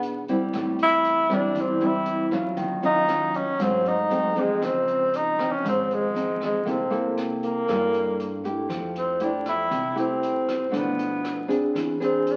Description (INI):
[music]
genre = bossa nova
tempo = 118 BPM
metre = 4/4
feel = straight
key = unclear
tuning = A4 = 438 Hz
[part]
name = breathy tenor saxophone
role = melody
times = 0.0-12.4 s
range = Ab3 to E4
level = -26 LUFS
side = equal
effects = none
[part]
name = nylon-string guitar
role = accompaniment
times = 0.0-12.4 s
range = G2 to A4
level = -28 LUFS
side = equal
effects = none
[part]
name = upright bass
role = bass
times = 0.0-12.4 s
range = Ab1 to G2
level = -46 LUFS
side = equal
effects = none
[part]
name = open jazz drum kit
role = drums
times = 0.0-12.4 s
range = hi-hat, kick drum, rim click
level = -43 LUFS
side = equal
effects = none
[sound]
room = wet large studio reverb, RT60 1.5 s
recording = very old 78 rpm record, vinyl crackle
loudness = -24 LUFS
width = mono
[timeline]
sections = 0.0-8.7 A section; 8.7-12.4 B section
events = tenor saxophone solo 8.7-12.4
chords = 0.0 E7b13; 0.5 Am7; 2.6 Ebm9; 3.6 Ab7b9; 4.6 Dbmaj9; 6.7 C6; 8.7 Fmaj9; 10.7 Bm7b5; 11.8 E7b13